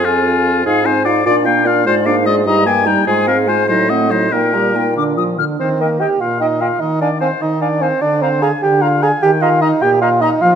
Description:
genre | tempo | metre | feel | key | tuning
quick classical-period movement for wind quintet | 100 BPM (dotted quarters) | 6/8 | rubato | Eb major | A4 = 445 Hz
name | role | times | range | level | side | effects
silver concert flute | melody | 0.0-10.3 s | D5 to F6 | -21 LUFS | left 9 dB | none
warm oboe | second line | 0.0-10.5 s | F4 to Ab5 | -18 LUFS | left 4 dB | none
clear French horn | accompaniment | 0.0-10.6 s | Bb2 to Eb4 | -20 LUFS | equal | none
warm clarinet | accompaniment | 0.0-10.3 s | C4 to F5 | -22 LUFS | right 8 dB | none
warm bassoon | bass | 0.0-10.6 s | F2 to Ab4 | -16 LUFS | right 3 dB | none
room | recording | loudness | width
wet recital hall reverb, RT60 1.8 s | none | -12 LUFS | side -8 dB against mid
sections
0.0-5.6 A section; 5.6-10.6 B section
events
none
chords
0.0 Fm; 0.7 Fm7/Ab; 1.3 Bb; 1.9 Bb7/Ab; 2.5 Eb/G; 3.1 Fm/Ab; 3.7 Adim7; 4.3 Eb/Bb; 5.0 Bb; 5.6 Eb; 6.8 F7(no3)/Eb; 8.0 Bb/D (rootless); 9.2 Eb

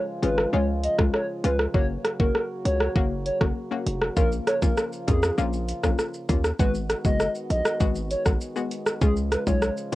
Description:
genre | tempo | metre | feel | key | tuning
dancehall | 99 BPM | 4/4 | straight | G# dorian | A4 = 440 Hz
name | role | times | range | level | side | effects
hollow clarinet-like synth lead | melody | 0.0-9.9 s | G#4 to D#5 | -28 LUFS | right 1 dB | chorus, cassette tape
analog pluck | accompaniment | 0.0-9.9 s | G#3 to F#4 | -30 LUFS | left 5 dB | chorus, cassette tape
mellow French horn section | sustained chords | 0.0-9.9 s | C#3 to F#4 | -35 LUFS | right 1 dB | cassette tape
hard-hitting 808-style bass | bass | 0.2-9.9 s | E#1 to E#2 | -27 LUFS | equal | none
pop drum kit | drums | 0.2-9.9 s | hi-hat, kick drum, rim click, shaker | -24 LUFS | equal | overdrive, cassette tape
room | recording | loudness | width
light reverb | home recording on cassette | -22 LUFS | side -17 dB against mid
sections
0.0-6.6 A section; 6.6-9.9 B section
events
none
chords
0.0 C#; 1.7 F#; 4.2 A#m; 6.6 G#m7; 9.0 C#

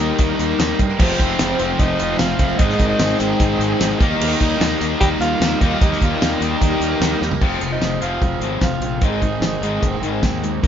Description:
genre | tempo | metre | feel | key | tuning
classic rock | 149 BPM | 4/4 | straight | F minor | A4 = 440 Hz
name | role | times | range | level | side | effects
fingerpicked plugged-in twelve-string acoustic guitar | accompaniment | 0.0-10.7 s | F2 to Ab4 | -30 LUFS | right 5 dB | none
bright tonewheel organ | sustained chords | 0.0-7.4 s | G3 to C5 | -31 LUFS | right 1 dB | none
crunchy overdriven guitar | riff | 0.0-10.7 s | F2 to Eb4 | -23 LUFS | left 5 dB | none
raw garage guitar | riff | 0.0-10.7 s | Ab2 to Ab4 | -25 LUFS | right 4 dB | overdrive
tight distorted guitar | riff | 0.0-7.2 s | F2 to Eb4 | -26 LUFS | right 1 dB | distortion
fuzz fingered electric bass | bass | 0.0-10.7 s | F1 to G2 | -25 LUFS | equal | overdrive
tambourine | percussion | 0.0-7.4 s | none | -41 LUFS | right 7 dB | none
damped 70s drum kit | drums | 0.2-10.7 s | crash cymbal, hi-hat, kick drum, snare drum, tambourine, toms | -19 LUFS | equal | none
growling tenor saxophone | melody | 1.0-10.5 s | C4 to G4 | -25 LUFS | right 1 dB | none
room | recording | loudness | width
moderate studio reverb, RT60 0.7 s | band playing live in one room, nothing above 7.5 kHz | -16 LUFS | side -9 dB against mid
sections
0.0-7.4 A section; 7.4-10.7 B section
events
drum fill 7.2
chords
0.0 Eb; 1.0 Fm; 2.6 Ab; 4.0 Eb; 7.4 Fm; 9.0 Ab

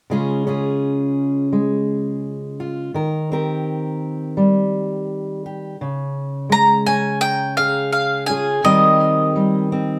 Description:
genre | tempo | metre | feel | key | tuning
acoustic folk duo or small band | 84 BPM | 4/4 | straight | unclear | A4 = 440 Hz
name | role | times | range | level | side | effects
fingerpicked steel-string acoustic guitar | accompaniment | 0.1-10.0 s | Db3 to Bb4 | -22 LUFS | equal | none
mandolin | melody | 6.5-10.0 s | Eb5 to Bb5 | -19 LUFS | equal | tape echo
room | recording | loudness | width
moderate studio reverb, RT60 0.6 s | none | -19 LUFS | mono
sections
0.1-5.8 A section; 5.8-10.0 B section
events
none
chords
0.1 Db; 2.9 Eb6; 5.8 Db; 8.6 Eb6

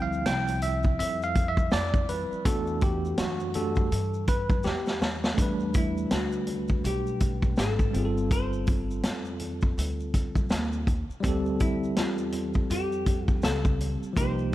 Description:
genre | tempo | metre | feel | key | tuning
hip hop, jazz-hop | 82 BPM | 4/4 | swing 60% on 16ths | E phrygian | A4 = 436 Hz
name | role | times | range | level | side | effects
bell-like tine electric piano | accompaniment | 0.0-14.5 s | E3 to G5 | -30 LUFS | right 1 dB | medium stereo tremolo
upright bass | bass | 0.0-14.5 s | G1 to G2 | -32 LUFS | equal | none
maracas and congas | percussion | 0.1-14.5 s | none | -44 LUFS | left 4 dB | none
vintage drum kit | drums | 0.3-14.4 s | hi-hat, kick drum, snare drum | -27 LUFS | equal | none
vintage hollow-body jazz guitar | melody | 5.8-14.5 s | E4 to C5 | -33 LUFS | left 3 dB | slapback echo
room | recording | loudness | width
light reverb, small room reverb | none | -24 LUFS | side -15 dB against mid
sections
0.0-5.4 A section; 5.4-14.5 B section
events
tine electric piano solo 0.0-5.4; drum fill 4.7-5.4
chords
0.0 Dm11; 2.5 Em11; 7.9 G9sus4; 11.2 Dm11

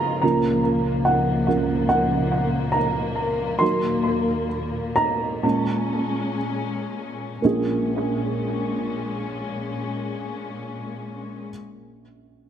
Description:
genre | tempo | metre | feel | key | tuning
pop | 58-73 BPM | 4/4 | straight | Bb minor | A4 = 440 Hz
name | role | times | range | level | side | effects
dark upright piano | accompaniment | 0.0-12.5 s | Bb1 to C6 | -22 LUFS | right 2 dB | analog delay
warm studio string section | sustained chords | 0.0-11.5 s | Db2 to F4 | -27 LUFS | left 3 dB | none
picked steel-string acoustic guitar | arpeggios | 0.0-0.8 s | Db3 to Ab4 | -38 LUFS | left 4 dB | none
room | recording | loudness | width
moderate echo chamber reverb, RT60 1.7 s, small room ambience | echo-heavy mix | -21 LUFS | side -9 dB against mid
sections
0.0-7.4 A section; 7.4-11.5 B section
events
upright piano solo 0.0-7.4; slowing down 0.2-7.4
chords
0.2 Gbmaj7/Db; 3.6 Ebm; 5.4 Bbm7

